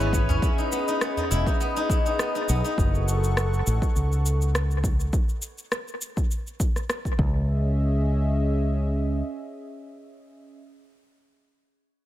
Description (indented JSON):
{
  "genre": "organic downtempo",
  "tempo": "102 BPM",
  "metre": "4/4",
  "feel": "swing 54% on 16ths",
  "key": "C# minor",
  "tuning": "A4 = 440 Hz",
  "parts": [
    { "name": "warm analog pad", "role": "sustained chords", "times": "0.0-10.6 s", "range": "C#4 to C#6", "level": "-32 LUFS", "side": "left 1 dB", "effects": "chorus, sidechain pumping" },
    { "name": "steel-string zither", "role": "arpeggios", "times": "0.0-5.6 s", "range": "B3 to F#4", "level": "-28 LUFS", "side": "left 1 dB", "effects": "dub echo" },
    { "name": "fretless electric bass", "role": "bass", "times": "0.0-9.2 s", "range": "E1 to C#2", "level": "-23 LUFS", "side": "equal", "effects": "none" },
    { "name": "electronic cabasa and rim click", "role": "drums", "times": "0.0-7.2 s", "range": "none", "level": "-31 LUFS", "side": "equal", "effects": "analog delay" },
    { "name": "electronic kick drum", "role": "drums", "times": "0.1-7.3 s", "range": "none", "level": "-24 LUFS", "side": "equal", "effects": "none" },
    { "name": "udu", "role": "percussion", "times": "0.3-1.3 s", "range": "none", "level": "-28 LUFS", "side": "equal", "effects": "none" }
  ],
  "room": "little or no reverb",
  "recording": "echo-heavy mix",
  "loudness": "-22 LUFS",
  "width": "side -14 dB against mid",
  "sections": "0.0-7.5 A section; 7.5-9.8 B section",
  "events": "none",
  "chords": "0.4 Emaj7; 2.8 F#m; 5.1 N.C.; 7.2 C#m"
}